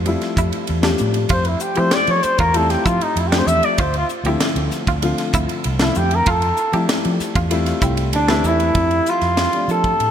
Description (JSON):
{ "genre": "electric jazz fusion", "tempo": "97 BPM", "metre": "4/4", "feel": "straight", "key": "F major", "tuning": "A4 = 440 Hz", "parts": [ { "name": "dark concert grand piano", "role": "accompaniment", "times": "0.0-10.1 s", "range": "D3 to A5", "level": "-23 LUFS", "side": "left 4 dB", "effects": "none" }, { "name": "semi-hollow electric guitar", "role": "stabs", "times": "0.0-8.5 s", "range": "D4 to G4", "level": "-28 LUFS", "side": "right 3 dB", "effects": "lush chorus, ping-pong delay" }, { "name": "fingered electric bass", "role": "bass", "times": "0.0-10.1 s", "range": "C2 to F3", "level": "-21 LUFS", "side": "right 1 dB", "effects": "none" }, { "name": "crisp fusion drum kit", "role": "drums", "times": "0.1-10.1 s", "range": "hi-hat, kick drum, ride cymbal, snare drum", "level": "-23 LUFS", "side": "equal", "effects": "gated reverb" }, { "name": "dark trumpet", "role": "melody", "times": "1.3-10.1 s", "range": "D4 to E5", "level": "-19 LUFS", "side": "equal", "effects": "none" }, { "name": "hollow-body jazz guitar", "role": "second line", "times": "8.2-10.1 s", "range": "D4 to A4", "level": "-24 LUFS", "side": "right 3 dB", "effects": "none" } ], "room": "moderate lush hall reverb, RT60 3.0 s", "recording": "bright 1980s-style digital production", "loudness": "-15 LUFS", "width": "side -9 dB against mid", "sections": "0.0-8.8 A section; 8.8-10.1 B section", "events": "trumpet solo 0.0-8.8; grand piano fill 7.5-8.8", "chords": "0.0 Fmaj9; 3.8 Dm9; 8.8 Fmaj9" }